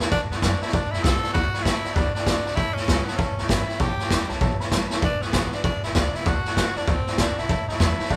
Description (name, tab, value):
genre	rockabilly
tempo	195 BPM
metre	4/4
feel	swing 63% on 8ths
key	A mixolydian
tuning	A4 = 440 Hz
part	picked steel-string acoustic guitar	accompaniment	0.0-8.2 s	E2 to F#4	-38 LUFS	equal	none
part	warm upright piano	accompaniment	0.0-8.2 s	B4 to C6	-37 LUFS	equal	none
part	upright bass	bass	0.0-8.2 s	E1 to A2	-30 LUFS	equal	none
part	raw garage drum kit	drums	0.0-8.2 s	hi-hat, kick drum, snare drum	-26 LUFS	equal	none
part	raspy tenor saxophone	melody	0.1-8.2 s	B3 to A4	-30 LUFS	equal	none
room	moderate studio reverb, RT60 0.5 s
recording	band playing live in one room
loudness	-23 LUFS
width	mono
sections	0.0-8.2 A section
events	upright piano fill 4.6-5.0; drum fill 4.9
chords	0.1 D7; 2.6 A7; 5.0 E7; 6.3 D7; 7.5 A7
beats	| 0.12 0.43 0.73 1.04 | 1.35 1.66 1.97 2.27 | 2.58 2.89 3.19 3.50 | 3.81 4.12 4.42 4.73 | 5.04 5.34 5.65 5.96 | 6.27 6.57 6.88 7.19 | 7.50 7.80 8.11